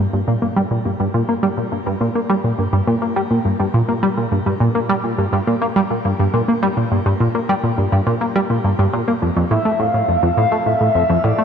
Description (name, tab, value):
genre	ambient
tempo	104 BPM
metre	4/4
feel	straight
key	G dorian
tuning	A4 = 439 Hz
part	tight sequenced synth	riff	0.0-11.4 s	F2 to Bb3	-16 LUFS	equal	chorus, shimmer reverb, tape echo
part	pulse-width lead	melody	9.5-11.4 s	D5 to F5	-17 LUFS	left 1 dB	chorus, shimmer reverb, tape echo
room	wet lush hall reverb, RT60 3.3 s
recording	none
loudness	-15 LUFS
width	side -7 dB against mid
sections	0.0-11.4 A section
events	none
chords	0.0 Gm; 9.2 Fmaj7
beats	0.57 1.14 1.72 | 2.30 2.87 3.45 4.03 | 4.60 5.18 5.76 6.33 | 6.91 7.49 8.07 8.64 | 9.22 9.80 10.37 10.95